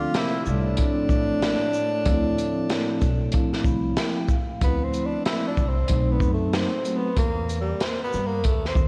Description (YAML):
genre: hip hop, jazz-hop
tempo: 94 BPM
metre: 4/4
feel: swing 61% on 16ths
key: D dorian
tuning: A4 = 440 Hz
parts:
  - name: breathy tenor saxophone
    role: melody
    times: 0.0-8.9 s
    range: G3 to F4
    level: -30 LUFS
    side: equal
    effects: diffuse ambient delay
  - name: breathy trombone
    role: second line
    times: 0.0-4.0 s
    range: A2 to D3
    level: -35 LUFS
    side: equal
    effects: diffuse ambient delay
  - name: vibraphone with soft mallets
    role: accompaniment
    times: 0.0-7.1 s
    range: F3 to B5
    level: -30 LUFS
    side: equal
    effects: none
  - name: upright bass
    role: bass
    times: 0.0-8.9 s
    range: A1 to G2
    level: -30 LUFS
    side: equal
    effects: none
  - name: crunchy breakbeat drum kit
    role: drums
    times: 0.1-8.9 s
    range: hi-hat, kick drum, shaker, snare drum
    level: -27 LUFS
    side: equal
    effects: none
room: moderate lush hall reverb, RT60 2.8 s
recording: dreamy mix soaked in reverb, cassette tape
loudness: -24 LUFS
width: mono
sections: 0.0-4.6 A section; 4.6-8.9 B section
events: vibraphone fill 3.3-4.6; tenor saxophone solo 4.6-8.9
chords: 0.0 Dm7; 4.6 Dm9; 5.9 B7b9; 7.2 Edim